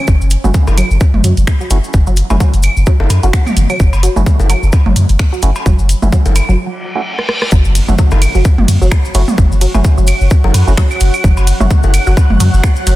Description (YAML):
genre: minimal techno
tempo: 129 BPM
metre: 4/4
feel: swing 57% on 16ths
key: F# minor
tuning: A4 = 440 Hz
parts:
  - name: punchy sub bass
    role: bass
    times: 0.1-13.0 s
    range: F#1 to F#2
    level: -11 LUFS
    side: equal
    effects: sidechain pumping
  - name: electronic kick drum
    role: drums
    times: 0.1-12.7 s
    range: none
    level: -10 LUFS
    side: equal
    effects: overdrive, studio reverb
  - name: cabasa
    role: percussion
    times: 0.1-13.0 s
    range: none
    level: -28 LUFS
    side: left 3 dB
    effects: none
  - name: garage drum kit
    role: drums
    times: 0.3-13.0 s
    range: finger snaps, hi-hat, ride cymbal, rim click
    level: -21 LUFS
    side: right 1 dB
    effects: overdrive, studio reverb, soft clipping on snare
  - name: resonant blip pluck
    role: riff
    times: 0.4-12.9 s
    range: F#3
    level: -22 LUFS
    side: right 2 dB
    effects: phaser, sidechain pumping, digital delay
  - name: percussive organ stab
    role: stabs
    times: 0.4-11.7 s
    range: A3 to F#4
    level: -24 LUFS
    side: right 3 dB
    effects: chorus, digital delay
  - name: electronic toms, cowbell, bongos and claves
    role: percussion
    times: 0.4-12.4 s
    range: none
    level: -19 LUFS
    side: right 1 dB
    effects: overdrive, studio reverb
  - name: reverse cymbal and impact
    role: sound effects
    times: 6.7-9.4 s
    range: none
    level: -22 LUFS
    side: left 1 dB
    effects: none
  - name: granular cloud pad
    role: texture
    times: 8.7-13.0 s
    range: F#4 to F#5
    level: -23 LUFS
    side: right 1 dB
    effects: built-in reverb, sidechain pumping
room: little or no reverb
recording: dense, heavily limited modern master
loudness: -9 LUFS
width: side -16 dB against mid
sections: 0.0-7.5 A section; 7.5-13.0 B section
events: break 6.6-7.5; reverse cymbal 6.7-7.5; drum fill 7.2-7.5; drop 7.5-13.0; impact 7.5-9.4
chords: 0.0 F#m7; 7.5 F#5